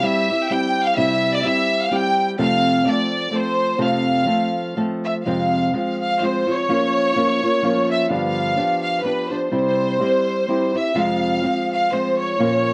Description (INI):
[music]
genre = mexican folk, mariachi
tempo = 126 BPM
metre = 3/4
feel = swing 55% on 8ths, rubato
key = F major, F harmonic minor from 5.3 s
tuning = A4 = 440 Hz
[part]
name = clear studio violin section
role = melody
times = 0.0-12.7 s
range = B4 to G5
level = -22 LUFS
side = equal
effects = cassette tape
[part]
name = nylon-string guitar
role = accompaniment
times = 0.0-12.7 s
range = F2 to A4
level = -23 LUFS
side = equal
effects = cassette tape
[sound]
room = moderate spring reverb, RT60 1.1 s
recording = home recording on cassette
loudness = -20 LUFS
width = mono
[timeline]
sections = 0.0-5.3 A section; 5.3-12.7 B section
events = none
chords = 0.0 C; 2.4 F; 5.3 Fm; 6.7 Bbm/F; 8.1 G7; 9.5 C; 11.0 Fm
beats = 0.04 0.51 | 0.98 1.46 1.93 | 2.40 2.87 3.34 | 3.81 4.28 4.76 | 5.25 5.74 6.21 | 6.69 7.17 7.64 | 8.11 8.58 9.05 | 9.53 10.01 10.49 | 10.97 11.46 11.94 | 12.41